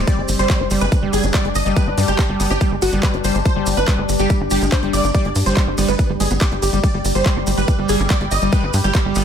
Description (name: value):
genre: psychedelic trance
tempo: 142 BPM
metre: 4/4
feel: straight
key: G major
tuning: A4 = 440 Hz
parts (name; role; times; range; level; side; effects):
- evolving wavetable pad; sustained chords; 0.0-9.2 s; G3 to G4; -24 LUFS; left 2 dB; phaser, built-in reverb, sidechain pumping
- tight sequencer bass; bass; 0.0-9.2 s; G1 to G2; -21 LUFS; equal; none
- supersaw stab; melody; 0.1-9.1 s; F#4 to Eb5; -23 LUFS; right 1 dB; phaser, vintage 12-bit sampler grit, sidechain pumping, ping-pong delay
- overdriven acid bass; riff; 0.1-9.2 s; G3 to G4; -23 LUFS; moving between left 6 dB and right 7 dB; distortion, auto-pan, sidechain pumping, analog delay
- electronic kick drum; drums; 0.1-9.0 s; none; -18 LUFS; equal; none
- techno drum kit; drums; 0.1-9.2 s; handclaps, hi-hat; -27 LUFS; equal; overdrive
- maracas; percussion; 0.1-9.2 s; none; -30 LUFS; right 3 dB; none
- metallic wobble bass; second line; 2.4-3.0, 5.8-6.0, 9.2 s; B3; -33 LUFS; left 4 dB; analog chorus, sidechain pumping, high-pass filter, tape echo
room: light reverb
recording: none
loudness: -15 LUFS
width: side -8 dB against mid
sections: 0.0-9.2 A section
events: none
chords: 0.0 G5